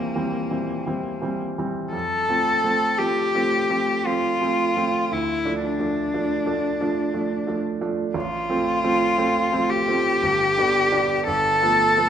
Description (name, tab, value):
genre	classical, romantic duo for cello and grand piano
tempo	57 BPM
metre	3/4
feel	rubato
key	unclear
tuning	A4 = 440 Hz
part	rich cello	melody	0.0-12.1 s	Bb3 to A4	-21 LUFS	left 2 dB	none
part	clear baby grand piano	accompaniment	0.0-12.1 s	G1 to D4	-25 LUFS	right 3 dB	none
room	moderate scoring stage reverb, RT60 1.7 s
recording	minimal, uncompressed stereo recording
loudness	-20 LUFS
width	side -9 dB against mid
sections	0.0-12.1 A section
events	none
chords	0.0 C7; 1.9 F; 5.1 Dm; 8.2 F/A; 10.2 G; 11.3 G9